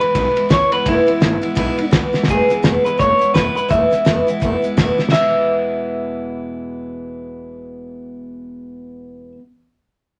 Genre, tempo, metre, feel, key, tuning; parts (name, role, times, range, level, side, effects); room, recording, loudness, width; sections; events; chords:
rockabilly; 169 BPM; 4/4; swing 61% on 8ths; E major; A4 = 440 Hz
electric guitar through a small old amp; melody; 0.0-9.3 s; E4 to E5; -20 LUFS; equal
picked steel-string acoustic guitar; accompaniment; 0.0-9.4 s; E2 to E4; -24 LUFS; equal
upright bass; bass; 0.0-9.3 s; E1 to C#2; -28 LUFS; equal
cloth-damped thuddy drum kit; drums; 0.0-5.2 s; crash cymbal, hi-hat, kick drum, ride cymbal, snare drum; -21 LUFS; equal
moderate club reverb, RT60 0.7 s; -16 LUFS; mono
0.0-2.3 A section; 2.3-5.1 B section; 5.1-8.0 C section
drum fill 2.1, 4.9
0.0 E